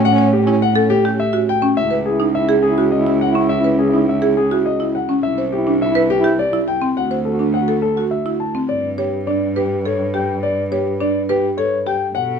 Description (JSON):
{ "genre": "classical, minimalist pattern music", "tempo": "104 BPM", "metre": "3/4", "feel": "straight", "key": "G lydian from 8.7 s", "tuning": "A4 = 439 Hz", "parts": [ { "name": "clear French horn", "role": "second line", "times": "0.0-12.4 s", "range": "C#4 to B4", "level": "-23 LUFS", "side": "right 1 dB", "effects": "none" }, { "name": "buzzing marimba with medium mallets", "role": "arpeggios", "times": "0.0-12.1 s", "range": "C4 to C#5", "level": "-20 LUFS", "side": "right 2 dB", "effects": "none" }, { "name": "rich cello", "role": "bass", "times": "0.0-12.4 s", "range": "C2 to B2", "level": "-21 LUFS", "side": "right 3 dB", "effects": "none" }, { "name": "warm concert grand piano", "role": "melody", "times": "0.1-12.3 s", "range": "G4 to A5", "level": "-20 LUFS", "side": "left 5 dB", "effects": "none" } ], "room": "little or no reverb", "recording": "minimal, uncompressed stereo recording", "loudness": "-15 LUFS", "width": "side -6 dB against mid", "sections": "0.0-8.7 A section; 8.7-12.4 B section", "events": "none", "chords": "0.0 A7; 1.8 C#m; 5.2 C; 7.0 D7; 8.7 G" }